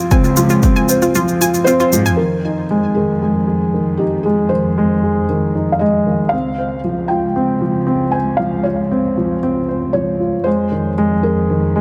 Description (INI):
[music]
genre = piano and strings electronica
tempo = 116 BPM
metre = 4/4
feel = straight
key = F minor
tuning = A4 = 438 Hz
[part]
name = dark upright piano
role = riff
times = 0.0-11.8 s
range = Eb3 to C5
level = -19 LUFS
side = equal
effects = none
[part]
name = analog pluck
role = arpeggios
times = 0.1-2.1 s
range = F4 to Ab5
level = -24 LUFS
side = equal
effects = chorus, sidechain pumping, digital delay
[part]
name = dark studio cello section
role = bass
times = 0.1-11.8 s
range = Db2 to Ab2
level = -22 LUFS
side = equal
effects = sidechain pumping
[part]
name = electronic kick drum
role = drums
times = 0.1-0.7 s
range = none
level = -15 LUFS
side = equal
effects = none
[part]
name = shaker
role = drums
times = 0.1-2.2 s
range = none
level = -24 LUFS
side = equal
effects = none
[part]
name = felt-muted upright piano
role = melody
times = 1.6-11.8 s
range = G4 to Ab5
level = -23 LUFS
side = equal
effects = none
[sound]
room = light reverb, studio reverb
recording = none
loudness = -16 LUFS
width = mono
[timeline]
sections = 0.0-2.2 A section; 2.2-11.8 B section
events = kick drops out 1.2-2.2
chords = 0.0 Dbmaj7; 2.2 Fm7; 6.3 Dbmaj7; 10.5 Fm7